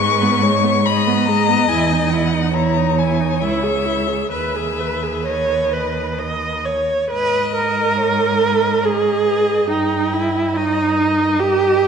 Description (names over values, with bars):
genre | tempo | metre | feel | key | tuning
classical, slow romantic movement for string quartet | 64-72 BPM | 3/4 | rubato | G# minor | A4 = 440 Hz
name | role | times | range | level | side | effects
rich violin | melody | 0.0-11.9 s | A#4 to C#6 | -24 LUFS | left 9 dB | none
rich violin | second line | 0.0-11.9 s | B4 to G5 | -25 LUFS | left 4 dB | none
warm viola | accompaniment | 0.0-11.9 s | G#3 to D#5 | -18 LUFS | right 2 dB | none
rich cello | bass | 0.0-11.9 s | C#2 to G#2 | -22 LUFS | right 4 dB | none
room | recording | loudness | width
moderate concert hall reverb, RT60 1.9 s | nothing above 10.7 kHz | -15 LUFS | side -6 dB against mid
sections
0.0-7.1 A section; 7.1-11.9 B section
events
none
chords
0.0 G#m; 1.7 Emaj13; 3.4 C#m; 4.3 G#m/D#; 6.2 Badd9/D#; 7.1 G#m; 9.7 D#/G